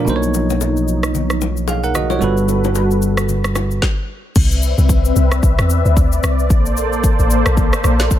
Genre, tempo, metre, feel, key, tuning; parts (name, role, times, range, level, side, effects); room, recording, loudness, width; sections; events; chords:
amapiano; 112 BPM; 4/4; swing 58% on 16ths; A4 = 440 Hz
bell-like tine electric piano; accompaniment; 0.0-3.8 s; B2 to F#5; -19 LUFS; right 4 dB
warm analog pad; sustained chords; 0.0-8.2 s; B2 to E5; -21 LUFS; left 2 dB; chorus, sidechain pumping
fingered electric bass; bass; 0.1-3.8 s; G1 to B1; -20 LUFS; equal
afro-pop drum kit; drums; 0.1-8.2 s; crash cymbal, kick drum, rim click, shaker, snare drum; -17 LUFS; equal
congas and bongos; percussion; 0.1-3.7 s; -26 LUFS; left 10 dB
deep log drum bass; bass; 4.4-8.1 s; A1 to E2; -15 LUFS; equal
little or no reverb; -13 LUFS; side -12 dB against mid
0.0-4.4 A section; 4.4-8.2 B section
drop 4.4-8.2
0.1 Bmaj9; 2.2 Gmaj9; 4.4 Cmaj9; 6.5 Bbmaj9